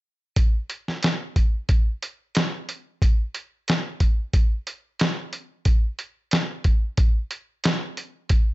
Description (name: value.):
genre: rock.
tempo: 91 BPM.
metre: 4/4.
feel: straight.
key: none.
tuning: none.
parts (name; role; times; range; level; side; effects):
lo-fi sampler-style drum kit; drums; 0.4-8.5 s; hi-hat, kick drum, snare drum; -20 LUFS; equal; none.
room: light reverb.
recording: nothing above 7.9 kHz.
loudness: -21 LUFS.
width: side -19 dB against mid.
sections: 0.4-8.5 A section.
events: none.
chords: none.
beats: | 0.37 1.03 1.69 2.36 | 3.02 3.68 4.35 5.01 | 5.67 6.33 6.99 7.65 | 8.31.